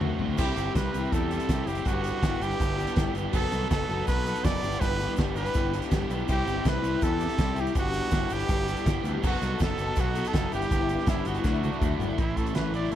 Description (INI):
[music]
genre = indie rock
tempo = 163 BPM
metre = 4/4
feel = straight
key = G major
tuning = A4 = 440 Hz
[part]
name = cranked stack guitar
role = riff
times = 0.0-13.0 s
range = G2 to A4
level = -36 LUFS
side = right 7 dB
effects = overdrive, lush chorus, slapback echo
[part]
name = electric guitar through a small old amp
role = riff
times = 0.0-13.0 s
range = G2 to A4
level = -32 LUFS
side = left 6 dB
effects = ensemble chorus
[part]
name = growling picked electric bass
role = bass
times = 0.0-13.0 s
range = F#1 to E2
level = -31 LUFS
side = equal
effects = overdrive
[part]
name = loose indie drum kit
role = drums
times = 0.0-13.0 s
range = crash cymbal, hi-hat, kick drum, snare drum, toms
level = -29 LUFS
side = equal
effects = none
[part]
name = brilliant trumpet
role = melody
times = 0.4-13.0 s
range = E4 to D5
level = -32 LUFS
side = right 3 dB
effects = slapback echo
[part]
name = ensemble organ-string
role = sustained chords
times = 0.4-12.2 s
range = C4 to E6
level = -40 LUFS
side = left 1 dB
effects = phaser, ensemble chorus
[part]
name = tube shaker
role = percussion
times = 0.4-12.1 s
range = none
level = -52 LUFS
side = left 22 dB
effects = none
[part]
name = delicate synth tine bell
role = second line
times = 6.3-11.8 s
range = E5 to B5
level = -43 LUFS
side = left 6 dB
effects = none
[sound]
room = little or no reverb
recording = none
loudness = -24 LUFS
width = side -11 dB against mid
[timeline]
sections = 0.4-12.2 A section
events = drum fill 0.0-0.4, 11.4-12.2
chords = 0.4 C; 1.9 G6; 3.3 B7/F#; 4.6 G6; 6.3 C; 7.8 G6; 9.2 B7/F#; 10.5 G6; 11.4 Dadd9; 12.2 Am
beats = 0.01 | 0.39 0.76 1.12 1.50 | 1.86 2.23 2.60 2.97 | 3.34 3.71 4.08 4.45 | 4.82 5.18 5.55 5.92 | 6.29 6.66 7.03 7.40 | 7.77 8.13 8.50 8.87 | 9.24 9.61 9.97 10.34 | 10.71 11.08 11.45 11.81 | 12.18 12.55 12.92